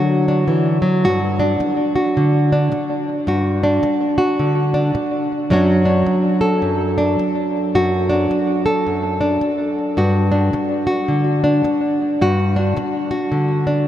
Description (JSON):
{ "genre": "folk, solo fingerstyle acoustic guitar", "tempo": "108 BPM", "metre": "4/4", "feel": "swing 61% on 8ths", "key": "unclear", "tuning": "A4 = 439 Hz", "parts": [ { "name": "nylon-string guitar", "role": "solo", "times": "0.0-13.9 s", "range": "F#2 to A4", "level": "-15 LUFS", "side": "equal", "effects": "tape echo" } ], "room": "wet huge ambient reverb, RT60 7.5 s", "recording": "dreamy mix soaked in reverb", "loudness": "-15 LUFS", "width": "side -11 dB against mid", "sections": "0.0-1.0 A section; 1.0-13.9 B section", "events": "none", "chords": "0.0 D; 1.0 G5; 5.5 Dmaj7/F#; 10.0 G5" }